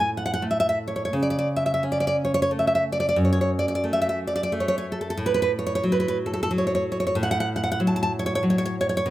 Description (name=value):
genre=romantic piece for solo classical guitar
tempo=85-96 BPM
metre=3/4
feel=rubato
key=unclear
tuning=A4 = 440 Hz
part: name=nylon-string guitar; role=solo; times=0.0-9.1 s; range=F#2 to A5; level=-21 LUFS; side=equal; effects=none
room=light reverb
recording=close, detailed microphones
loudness=-21 LUFS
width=side -15 dB against mid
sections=0.0-9.1 A section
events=none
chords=0.0 N.C.; 1.1 A/C#; 3.2 F#m; 5.2 F#m/A